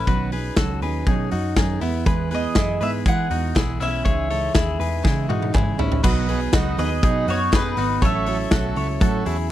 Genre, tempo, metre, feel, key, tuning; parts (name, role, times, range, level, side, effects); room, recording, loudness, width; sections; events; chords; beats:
jangly indie pop; 121 BPM; 4/4; straight; A4 = 440 Hz
mandolin; melody; 0.0-9.5 s; B4 to F#5; -26 LUFS; left 1 dB; slapback echo
picked steel-string acoustic guitar; accompaniment; 0.0-9.5 s; A2 to E4; -26 LUFS; right 8 dB
direct-recorded clean electric guitar; arpeggios; 0.0-9.5 s; B3 to C#5; -28 LUFS; left 4 dB; phaser, slapback echo
vintage muted picked electric bass; bass; 0.0-9.5 s; G#1 to E3; -26 LUFS; equal
big rock drum kit; drums; 0.1-9.4 s; crash cymbal, hi-hat, kick drum, snare drum, toms; -22 LUFS; equal
group handclap; percussion; 2.6-8.6 s; -36 LUFS; right 4 dB
overdriven combo organ; accompaniment; 6.0-9.4 s; D#4 to E5; -30 LUFS; right 7 dB
little or no reverb; dry, close 1970s-style studio recording; -18 LUFS; side -13 dB against mid
0.0-6.0 A section; 6.0-9.5 B section
drum fill 5.1-6.0
0.1 Badd9; 1.8 E; 4.1 C#madd9; 6.0 B; 8.0 A6
| 0.07 0.57 1.07 1.57 | 2.07 2.56 3.06 3.56 | 4.06 4.55 5.05 5.55 | 6.04 6.54 7.03 7.53 | 8.02 8.52 9.01 9.51